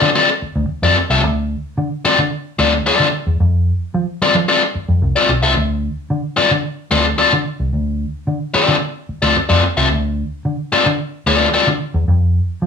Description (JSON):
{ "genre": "funk", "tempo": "111 BPM", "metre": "4/4", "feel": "straight", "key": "D minor", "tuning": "A4 = 440 Hz", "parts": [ { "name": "biting overdriven guitar", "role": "accompaniment", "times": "0.0-11.7 s", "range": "C4 to E5", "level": "-14 LUFS", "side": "left 3 dB", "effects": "none" }, { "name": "vintage muted fingered electric bass", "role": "bass", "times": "0.0-12.7 s", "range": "B1 to F3", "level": "-17 LUFS", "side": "equal", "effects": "none" } ], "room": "light reverb", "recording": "studio ambience", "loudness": "-14 LUFS", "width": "side -6 dB against mid", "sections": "0.0-12.7 A section", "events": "none", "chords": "0.0 Dm7; 3.4 F6; 5.6 Dm7; 12.1 N.C." }